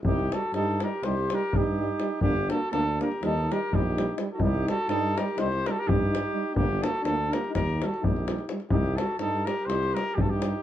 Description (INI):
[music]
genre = balkan folk, Balkan brass band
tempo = 250 BPM (eighths)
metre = 9/8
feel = straight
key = C dorian sharp4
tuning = A4 = 444 Hz
[part]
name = mellow trumpet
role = melody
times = 0.0-10.6 s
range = G4 to C5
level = -30 LUFS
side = left 1 dB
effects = none
[part]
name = mellow alto saxophone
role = second line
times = 0.0-10.6 s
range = D4 to G4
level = -33 LUFS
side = right 3 dB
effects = none
[part]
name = clear trombone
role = accompaniment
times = 0.0-10.5 s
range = G3 to Bb3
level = -34 LUFS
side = right 4 dB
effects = none
[part]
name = warm euphonium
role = accompaniment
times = 0.0-10.5 s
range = D4 to Eb4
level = -35 LUFS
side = left 3 dB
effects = none
[part]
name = warm tuba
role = bass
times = 0.0-10.5 s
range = G1 to G2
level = -30 LUFS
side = equal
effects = none
[part]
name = davul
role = percussion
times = 0.0-10.5 s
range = none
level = -30 LUFS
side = left 2 dB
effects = none
[sound]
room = moderate studio reverb, RT60 0.6 s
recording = dark, warm production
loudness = -24 LUFS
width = side -11 dB against mid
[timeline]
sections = 0.0-10.6 A section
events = none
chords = 0.0 Cm; 2.2 Gm; 3.2 Eb; 4.4 Cm; 6.5 Gm; 7.5 Eb; 8.7 Cm